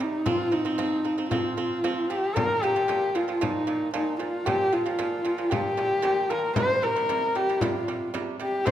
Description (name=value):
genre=mongolian traditional, Mongolian folk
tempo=114 BPM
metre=4/4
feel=straight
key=Bb zhi mode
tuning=A4 = 440 Hz
part: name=dark horsehead fiddle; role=melody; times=0.0-8.7 s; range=Eb4 to C5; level=-24 LUFS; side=left 1 dB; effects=none
part: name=pipa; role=arpeggios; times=0.0-8.7 s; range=Bb2 to C4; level=-32 LUFS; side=right 5 dB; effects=none
part: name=frame drum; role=percussion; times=0.0-8.7 s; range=none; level=-32 LUFS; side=left 3 dB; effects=none
room=wet recital hall reverb, RT60 1.8 s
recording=none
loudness=-23 LUFS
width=side -11 dB against mid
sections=0.0-8.7 A section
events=none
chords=0.3 F5; 2.4 Bb5; 6.6 C5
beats=| 0.27 0.79 1.31 1.84 | 2.36 2.89 3.41 3.94 | 4.46 4.99 5.51 6.04 | 6.57 7.09 7.62 8.14 | 8.67